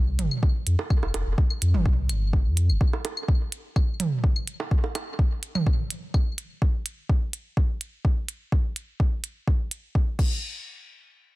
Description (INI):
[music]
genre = minimal techno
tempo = 126 BPM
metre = 4/4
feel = straight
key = unclear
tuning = A4 = 440 Hz
[part]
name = saturated sub bass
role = bass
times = 0.0-2.8 s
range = F1 to F2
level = -23 LUFS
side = equal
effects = sidechain pumping
[part]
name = minimal click drum kit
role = drums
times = 0.2-10.3 s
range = crash cymbal, hi-hat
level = -33 LUFS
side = right 1 dB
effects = none
[part]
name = electronic toms, claves and bongos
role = percussion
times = 0.2-6.2 s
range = none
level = -30 LUFS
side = right 3 dB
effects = digital delay
[part]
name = electronic kick drum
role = drums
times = 0.4-10.3 s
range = none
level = -22 LUFS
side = equal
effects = none
[sound]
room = digital ambience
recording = dense, heavily limited modern master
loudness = -23 LUFS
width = side -19 dB against mid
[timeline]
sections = 0.0-10.4 A section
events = none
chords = none